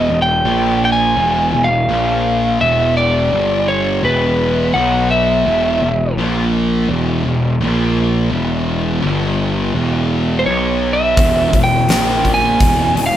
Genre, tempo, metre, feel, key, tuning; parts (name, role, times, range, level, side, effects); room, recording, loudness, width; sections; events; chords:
blues rock power trio and southern rock; 84 BPM; 4/4; straight; A4 = 437 Hz
lightly driven lead guitar; melody; 0.0-13.2 s; B4 to G#5; -15 LUFS; equal
thick fuzz guitar; riff; 0.0-13.2 s; E2 to B3; -18 LUFS; equal; distortion
fuzz picked electric bass; bass; 0.0-13.2 s; E1 to B1; -19 LUFS; equal; overdrive
huge arena drum kit; drums; 11.2-13.1 s; hi-hat, kick drum, snare drum; -16 LUFS; equal
moderate studio reverb, RT60 0.7 s; band playing live in one room; -13 LUFS; side -11 dB against mid
0.0-13.2 A section
0.5 A#5; 1.2 E; 1.9 A#5; 2.6 E5; 3.3 G5; 4.0 E5; 4.8 B5; 5.5 E5; 6.2 A#5; 6.9 E5; 7.6 A#5; 8.3 E5; 9.0 G5; 9.8 E5; 10.5 B5; 11.2 E5; 11.9 A#5; 12.6 E